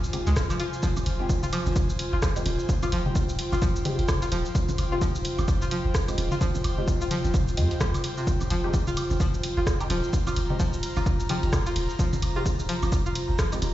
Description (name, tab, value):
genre	minimal techno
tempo	129 BPM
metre	4/4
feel	swing 59% on 16ths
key	F minor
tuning	A4 = 439 Hz
part	punchy sub bass	bass	0.0-13.7 s	Eb1 to F2	-27 LUFS	equal	sidechain pumping
part	punchy analog drum machine	drums	0.0-13.7 s	hi-hat, ride cymbal, rim click, shaker	-34 LUFS	equal	none
part	airy breathy pad	texture	0.0-13.7 s	F4 to Bb5	-32 LUFS	equal	chorus, sidechain pumping
part	filtered dub chord stab	stabs	0.1-13.6 s	Ab3 to G4	-38 LUFS	right 1 dB	phaser, digital delay
part	electronic toms, woodblock and congas	percussion	0.1-13.7 s	none	-33 LUFS	equal	overdrive, digital delay
part	string-like resonator pluck	riff	0.3-13.4 s	C3 to F4	-33 LUFS	left 1 dB	chorus, sidechain pumping, ping-pong delay
part	electronic kick drum	drums	0.4-13.5 s	none	-27 LUFS	equal	none
room	light reverb, digital ambience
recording	played on a big sound system in a bare room, large studio reverb, nothing above 7.8 kHz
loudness	-23 LUFS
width	side -14 dB against mid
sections	0.0-13.7 A section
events	none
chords	0.0 Fm7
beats	0.36 | 0.83 1.29 1.76 2.23 | 2.69 3.15 3.62 4.08 | 4.55 5.02 5.48 5.95 | 6.41 6.88 7.34 7.81 | 8.27 8.74 9.20 9.67 | 10.13 10.60 11.06 11.53 | 11.99 12.46 12.92 13.39